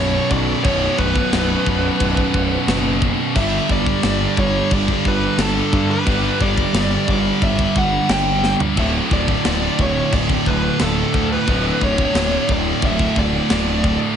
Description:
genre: heavy metal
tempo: 89 BPM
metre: 4/4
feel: straight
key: unclear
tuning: A4 = 440 Hz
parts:
  - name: dark smooth lead guitar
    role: melody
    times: 0.0-14.0 s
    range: A4 to G5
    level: -23 LUFS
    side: left 1 dB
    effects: overdrive
  - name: scooped high-gain guitar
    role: riff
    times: 0.0-14.2 s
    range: B1 to G3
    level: -22 LUFS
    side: left 12 dB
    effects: distortion
  - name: scooped high-gain guitar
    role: riff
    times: 0.0-14.2 s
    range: B1 to G3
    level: -21 LUFS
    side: right 10 dB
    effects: distortion
  - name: fuzz picked electric bass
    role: bass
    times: 0.0-13.9 s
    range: B0 to G2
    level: -23 LUFS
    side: equal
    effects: overdrive
  - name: tight metal drum kit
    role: drums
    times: 0.3-14.0 s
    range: crash cymbal, kick drum, snare drum, toms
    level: -22 LUFS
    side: equal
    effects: none
room: little or no reverb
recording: nothing above 10.6 kHz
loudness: -15 LUFS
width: side -8 dB against mid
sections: 0.0-14.2 A section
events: drum fill 8.4-8.8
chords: 0.0 B5; 3.4 G5; 8.8 D5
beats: | 0.64 1.32 2.00 2.68 | 3.35 4.03 4.71 5.38 | 6.06 6.74 7.42 8.09 | 8.77 9.45 10.12 10.80 | 11.47 12.15 12.83 13.50

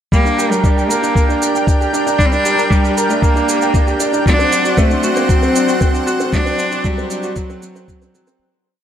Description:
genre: piano and strings electronica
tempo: 116 BPM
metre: 4/4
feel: straight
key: G harmonic minor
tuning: A4 = 441 Hz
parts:
  - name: bright cello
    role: melody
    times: 0.1-8.1 s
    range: F#3 to D4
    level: -18 LUFS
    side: left 1 dB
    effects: none
  - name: lush unison pad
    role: sustained chords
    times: 0.1-8.4 s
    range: D4 to G5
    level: -22 LUFS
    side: equal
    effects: chorus, sidechain pumping
  - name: clear concert grand piano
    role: riff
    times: 0.1-8.4 s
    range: F#3 to G5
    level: -18 LUFS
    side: right 1 dB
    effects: digital delay
  - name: warm sub bass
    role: bass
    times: 0.1-8.4 s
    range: none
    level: barely audible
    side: none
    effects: none
  - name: electronic kick drum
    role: drums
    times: 0.1-8.0 s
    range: none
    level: -15 LUFS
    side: equal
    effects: none
  - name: shaker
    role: drums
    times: 0.1-8.4 s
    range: none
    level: -26 LUFS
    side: right 3 dB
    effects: high-pass filter on perc, high-pass filter on room
room: moderate lush hall reverb, RT60 2.0 s, digital ambience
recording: none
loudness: -12 LUFS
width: side -9 dB against mid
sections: 0.1-8.4 build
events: build-up 0.1-8.4; fade-out 5.6-8.4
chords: 0.1 Gm; 4.3 D7/F#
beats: | 0.13 0.65 1.16 1.68 | 2.20 2.71 3.23 3.75 | 4.27 4.78 5.30 5.82 | 6.34 6.85 7.37 7.89

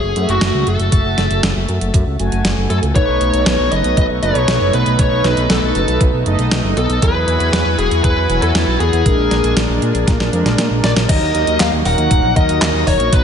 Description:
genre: synthwave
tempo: 118 BPM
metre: 4/4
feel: straight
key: unclear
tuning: A4 = 440 Hz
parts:
  - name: bluesy overdriven lead guitar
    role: melody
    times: 0.0-13.2 s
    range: F#4 to Gb5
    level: -18 LUFS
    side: left 1 dB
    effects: distortion, ping-pong delay
  - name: mellow synth brass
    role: stabs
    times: 0.0-13.2 s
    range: F#3 to G#5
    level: -22 LUFS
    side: right 2 dB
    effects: chorus, ping-pong delay
  - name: fat analog bass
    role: bass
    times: 0.0-13.2 s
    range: Eb1 to A#2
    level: -18 LUFS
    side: equal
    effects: none
  - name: clean 12-bit digital drum machine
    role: drums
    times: 0.2-13.2 s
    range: crash cymbal, handclaps, hi-hat, snare drum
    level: -20 LUFS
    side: equal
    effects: gated reverb
  - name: electronic kick drum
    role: drums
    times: 0.9-13.2 s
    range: none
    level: -14 LUFS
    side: equal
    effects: none
  - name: lush unison pad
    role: sustained chords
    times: 3.0-13.2 s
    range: E3 to G#5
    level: -23 LUFS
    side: equal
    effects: chorus, sidechain pumping
room: light reverb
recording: nothing above 10.8 kHz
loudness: -13 LUFS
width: side -7 dB against mid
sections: 0.0-11.1 A section; 11.1-13.2 B section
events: drum fill 10.1-11.1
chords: 0.0 F#m7; 3.0 B7; 7.0 Eadd9; 9.1 A#7; 11.1 Ebm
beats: 0.41 | 0.92 1.43 1.94 2.45 | 2.96 3.47 3.97 4.48 | 4.99 5.50 6.01 6.52 | 7.03 7.53 8.04 8.55 | 9.06 9.57 10.08 10.59 | 11.09 11.60 12.11 12.62 | 13.13

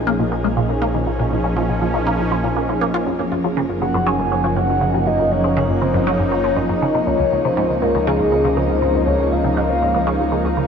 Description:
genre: ambient, sequencer-driven space music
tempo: 120 BPM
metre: 4/4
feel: straight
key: Gb lydian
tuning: A4 = 440 Hz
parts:
  - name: sweeping resonant pad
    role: sustained chords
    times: 0.0-10.7 s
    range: F3 to Ab4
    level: -20 LUFS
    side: equal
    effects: chorus, shimmer reverb
  - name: analog drone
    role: bass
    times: 0.0-10.7 s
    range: Gb1 to Db2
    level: -24 LUFS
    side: equal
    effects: chorus, tube saturation
  - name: resonant blip pluck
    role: riff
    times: 0.1-10.6 s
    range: Db2 to F4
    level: -22 LUFS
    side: equal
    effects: phaser, lush chorus, shimmer reverb, analog delay
  - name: soft octave-layered synth lead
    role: melody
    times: 3.8-10.7 s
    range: Ab4 to Ab5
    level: -20 LUFS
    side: left 1 dB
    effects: chorus, phaser, shimmer reverb, analog delay
room: wet plate reverb, RT60 3.2 s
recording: none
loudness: -16 LUFS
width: side -6 dB against mid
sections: 0.0-10.7 A section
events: filter sweep on synth arpeggio sound 0.0-10.7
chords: 0.0 Bbm; 3.1 Gb; 7.1 Db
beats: 0.07 0.57 | 1.07 1.57 2.07 2.57 | 3.07 3.57 4.07 4.57 | 5.07 5.57 6.07 6.57 | 7.07 7.57 8.07 8.57 | 9.07 9.57 10.07 10.57

